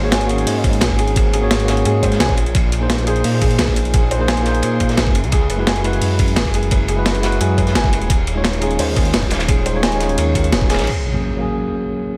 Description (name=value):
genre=liquid drum and bass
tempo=173 BPM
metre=4/4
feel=straight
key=Ab mixolydian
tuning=A4 = 440 Hz
part: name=tine electric piano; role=accompaniment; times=0.0-12.2 s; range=Gb3 to Db5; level=-24 LUFS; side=equal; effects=digital delay
part: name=felt-muted upright piano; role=arpeggios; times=0.0-10.9 s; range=Ab4 to Ab5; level=-27 LUFS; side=equal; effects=digital delay
part: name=swelling detuned saw bass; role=bass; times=0.0-10.9 s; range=Eb1 to Bb2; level=-22 LUFS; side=equal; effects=none
part: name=breakbeat sampler-style drum kit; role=drums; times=0.1-10.9 s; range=crash cymbal, hi-hat, snare drum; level=-24 LUFS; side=equal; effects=small room reverb
part: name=crunchy breakbeat drum kit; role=drums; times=0.1-10.9 s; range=hi-hat, ride cymbal, snare drum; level=-29 LUFS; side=equal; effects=high-pass filter on cymbals, small room reverb, high-pass filter on hats, high-pass filter on snare, high-pass filter on room
part: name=electronic kick drum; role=drums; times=0.6-10.7 s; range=none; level=-20 LUFS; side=equal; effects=overdrive, small room reverb
part: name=impact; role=sound effects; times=10.9-12.2 s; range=none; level=-26 LUFS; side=equal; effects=none
room=light reverb, small room reverb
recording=none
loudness=-17 LUFS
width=mono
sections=0.0-10.9 A section; 10.9-12.2 B section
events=band accent 10.5; impact 10.9-12.2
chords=0.0 Ab9sus4; 2.4 Bb9sus4; 5.2 Gb9sus4; 8.1 Eb9sus4; 10.9 Ab9sus4